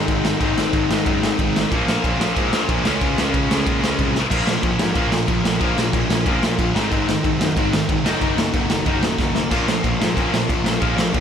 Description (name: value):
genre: punk rock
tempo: 184 BPM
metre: 4/4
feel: straight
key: Bb minor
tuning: A4 = 440 Hz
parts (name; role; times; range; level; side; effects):
- crunchy overdriven guitar; riff; 0.0-11.2 s; Ab2 to Eb4; -25 LUFS; right 11 dB; none
- heavy high-gain guitar; riff; 0.0-11.2 s; Ab2 to Gb4; -25 LUFS; left 1 dB; distortion
- tight distorted guitar; riff; 0.0-11.2 s; Ab2 to Eb4; -24 LUFS; left 12 dB; distortion
- fuzz picked electric bass; bass; 0.0-11.2 s; Gb1 to Bb2; -26 LUFS; equal; overdrive
- raw garage drum kit; drums; 0.1-11.2 s; crash cymbal, kick drum, snare drum, splash cymbal; -21 LUFS; right 1 dB; none
room: little or no reverb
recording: none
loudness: -17 LUFS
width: side -8 dB against mid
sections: 0.0-4.3 A section; 4.3-11.2 B section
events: drum fill 4.1, 9.2-9.5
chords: 0.0 Ab; 1.7 Bbm; 2.8 Db; 4.3 Bbm; 6.8 Ab; 8.1 Ebm/Gb; 9.5 Bbm